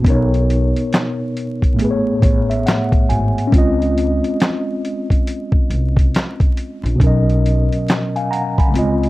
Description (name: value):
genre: lo-fi hip hop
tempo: 69 BPM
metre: 4/4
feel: swing 62% on 16ths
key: unclear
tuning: A4 = 440 Hz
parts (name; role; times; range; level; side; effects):
- mellow tine electric piano; accompaniment; 0.0-9.1 s; A2 to Cb6; -18 LUFS; equal; medium stereo tremolo, low-pass filter
- upright bass; bass; 0.0-9.1 s; G#1 to Db2; -19 LUFS; equal; none
- dusty soul sampler-style drum kit; drums; 0.0-9.1 s; handclaps, hi-hat, kick drum, snare drum; -16 LUFS; equal; none
room: light reverb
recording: dark, warm production, vinyl crackle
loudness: -14 LUFS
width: side -18 dB against mid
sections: 0.0-9.1 A section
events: none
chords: 0.0 Cbmaj9; 1.8 Amaj9; 3.5 Dbmaj9; 7.0 Cbmaj9